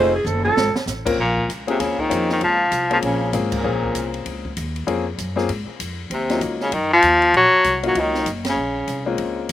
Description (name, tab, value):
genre	jazz, small-group swing and bop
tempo	195 BPM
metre	4/4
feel	swing 61% on 8ths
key	Bb minor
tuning	A4 = 441 Hz
part	growling alto saxophone	second line	0.0-4.1, 6.1-9.0 s	Bb3 to C5	-24 LUFS	right 3 dB	slapback echo
part	bright upright piano	accompaniment	0.0-9.5 s	Gb3 to Bb4	-23 LUFS	left 5 dB	none
part	upright bass	bass	0.0-9.5 s	F1 to Ab2	-28 LUFS	equal	none
part	open jazz drum kit	drums	0.3-9.5 s	crash cymbal, hi-hat, kick drum, ride cymbal, snare drum, toms	-30 LUFS	equal	none
part	warm baritone saxophone	melody	1.2-4.1, 6.1-9.0 s	Bb2 to Gb3	-18 LUFS	left 2 dB	none
room	little or no reverb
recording	recorded outdoors, with no room sound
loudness	-17 LUFS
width	side -13 dB against mid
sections	0.0-1.2 A section; 1.2-9.5 B section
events	alto saxophone solo 0.0-1.2; drum fill 0.3-0.9; band accent 3.5, 8.4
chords	0.0 F(#9); 1.2 Bbm7; 6.1 Ebm7; 8.6 Bbm7